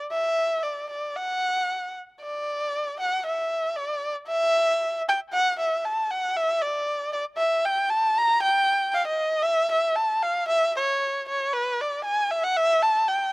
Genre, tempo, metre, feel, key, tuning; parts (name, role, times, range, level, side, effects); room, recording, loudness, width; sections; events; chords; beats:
alpine folk; 116 BPM; 2/4; straight; A4 = 442 Hz
warm erhu; solo; 0.1-13.3 s; B4 to Bb5; -22 LUFS; equal
little or no reverb; recorded outdoors, with no room sound; -22 LUFS; side -27 dB against mid
0.0-6.4 A section; 6.4-13.3 B section
| 0.11 0.63 | 1.15 1.68 | 2.20 2.73 | 3.25 3.77 | 4.28 4.80 | 5.31 5.83 | 6.35 6.87 | 7.38 7.90 | 8.41 8.93 | 9.45 9.97 | 10.49 11.01 | 11.53 12.04 | 12.55 13.06